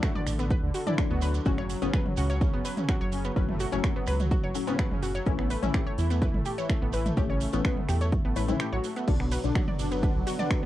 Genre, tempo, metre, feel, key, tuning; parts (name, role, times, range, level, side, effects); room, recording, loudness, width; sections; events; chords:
melodic techno; 126 BPM; 4/4; straight; A4 = 442 Hz
soft supersaw; melody; 0.0-10.7 s; F#2 to F#4; -34 LUFS; equal; sidechain pumping, cassette tape, tape echo
analog pluck; arpeggios; 0.0-10.7 s; B3 to D5; -35 LUFS; equal; chorus, sidechain pumping, cassette tape, tape echo
filtered dub chord stab; stabs; 0.0-10.7 s; A2 to D4; -34 LUFS; left 9 dB; chorus, sidechain pumping, cassette tape, tape echo
electronic kick drum; drums; 0.0-10.6 s; -27 LUFS; equal; overdrive, cassette tape
techno drum kit; drums; 0.0-10.6 s; crash cymbal, finger snaps, hi-hat, ride cymbal, toms; -35 LUFS; right 1 dB; overdrive, cassette tape
shekere; percussion; 0.0-10.6 s; -44 LUFS; right 12 dB
round analog bass; bass; 0.3-10.7 s; F#1 to E2; -30 LUFS; equal; sidechain pumping
deep dark ambient pad; sustained chords; 9.8-10.7 s; B3 to F#5; -36 LUFS; equal; chorus, built-in reverb, sidechain pumping, cassette tape
light reverb; home recording on cassette; -25 LUFS; side -14 dB against mid
0.0-10.7 A section
break 8.6-9.1
0.0 D; 1.5 F#m; 5.3 A; 9.1 Bm